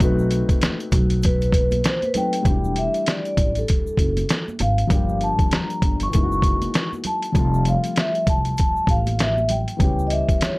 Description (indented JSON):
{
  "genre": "hip hop, jazz-hop",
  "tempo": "98 BPM",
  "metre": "4/4",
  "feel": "swing 60% on 16ths",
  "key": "unclear",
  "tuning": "A4 = 439 Hz",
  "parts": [
    { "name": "dark grand piano", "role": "accompaniment", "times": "0.0-10.6 s", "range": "E3 to B4", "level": "-28 LUFS", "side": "left 3 dB", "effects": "none" },
    { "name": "upright bass", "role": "bass", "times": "0.0-10.2 s", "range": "E1 to C#2", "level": "-22 LUFS", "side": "equal", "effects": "none" },
    { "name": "trip hop sampler-style drum kit", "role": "drums", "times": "0.0-10.6 s", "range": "hi-hat, kick drum, snare drum", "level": "-20 LUFS", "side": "equal", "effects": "none" },
    { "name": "tube shaker and congas", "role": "percussion", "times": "0.0-10.6 s", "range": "none", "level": "-33 LUFS", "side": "right 4 dB", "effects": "none" },
    { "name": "vibraphone with soft mallets", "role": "melody", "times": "1.3-10.6 s", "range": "A4 to C#6", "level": "-24 LUFS", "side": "equal", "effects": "none" }
  ],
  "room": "little or no reverb",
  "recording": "dry, gritty hardware recording",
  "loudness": "-18 LUFS",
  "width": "side -22 dB against mid",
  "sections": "0.0-2.5 A section; 2.5-10.6 B section",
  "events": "vibraphone solo 0.0-2.5",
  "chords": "0.0 B7b9; 2.5 Em11; 4.9 Gm7; 6.1 F#13; 7.4 Fadd9; 9.8 C#m7b5"
}